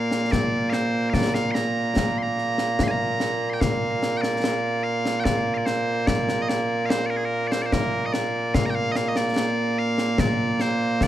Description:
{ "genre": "scottish traditional, Scottish pipe music", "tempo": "73 BPM", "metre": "3/4", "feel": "straight", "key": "Bb major", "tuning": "A4 = 439 Hz", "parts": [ { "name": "loud bright bagpipes", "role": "melody", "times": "0.0-11.1 s", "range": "Bb2 to C6", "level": "-22 LUFS", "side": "right 1 dB", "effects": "none" }, { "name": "concert snare drum and concert bass drum", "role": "drums", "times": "0.1-11.1 s", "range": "none", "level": "-26 LUFS", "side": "left 2 dB", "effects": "none" } ], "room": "light reverb", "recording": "dark, warm production", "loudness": "-21 LUFS", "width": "side -12 dB against mid", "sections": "0.0-3.6 A section; 3.6-11.1 A section", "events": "none", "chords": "none", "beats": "0.32 | 1.14 1.96 2.79 | 3.61 4.43 5.25 | 6.07 6.89 7.72 | 8.54 9.36 10.18 | 11.00" }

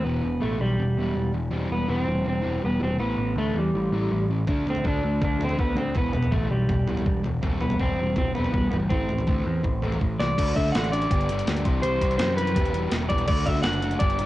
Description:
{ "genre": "indie rock", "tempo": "163 BPM", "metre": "4/4", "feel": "straight", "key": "D mixolydian", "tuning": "A4 = 436 Hz", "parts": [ { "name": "electric guitar through a small old amp", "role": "melody", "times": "0.0-14.3 s", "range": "G3 to F#5", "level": "-27 LUFS", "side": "equal", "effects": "cassette tape" }, { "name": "fuzz guitar", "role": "riff", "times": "0.0-14.3 s", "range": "E2 to G4", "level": "-28 LUFS", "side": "equal", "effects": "distortion, cassette tape" }, { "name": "growling picked electric bass", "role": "bass", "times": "0.0-14.3 s", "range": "E1 to F#2", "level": "-28 LUFS", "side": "equal", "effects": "overdrive" }, { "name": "crisp 8-bit digital drum machine", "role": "drums", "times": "4.5-14.3 s", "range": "crash cymbal, hi-hat, kick drum, snare drum, toms", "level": "-26 LUFS", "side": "equal", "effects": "none" } ], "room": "little or no reverb", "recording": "home recording on cassette, nothing above 11.0 kHz", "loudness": "-22 LUFS", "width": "side -16 dB against mid", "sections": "0.0-10.4 A section; 10.4-14.3 B section", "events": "drum fill 10.0-10.4", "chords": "0.1 Em; 1.5 C/E; 3.0 A5; 4.5 D5; 6.0 Em; 7.4 C/E; 8.9 Am; 10.4 D; 11.1 G; 11.7 C; 12.6 Em; 13.3 D", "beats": "| 0.06 0.42 0.79 1.16 | 1.53 1.90 2.27 2.63 | 3.00 3.37 3.74 4.11 | 4.48 4.85 5.22 5.58 | 5.95 6.32 6.69 7.06 | 7.43 7.80 8.17 8.53 | 8.90 9.27 9.64 10.01 | 10.37 10.74 11.10 11.47 | 11.83 12.20 12.56 12.93 | 13.29 13.65 14.02" }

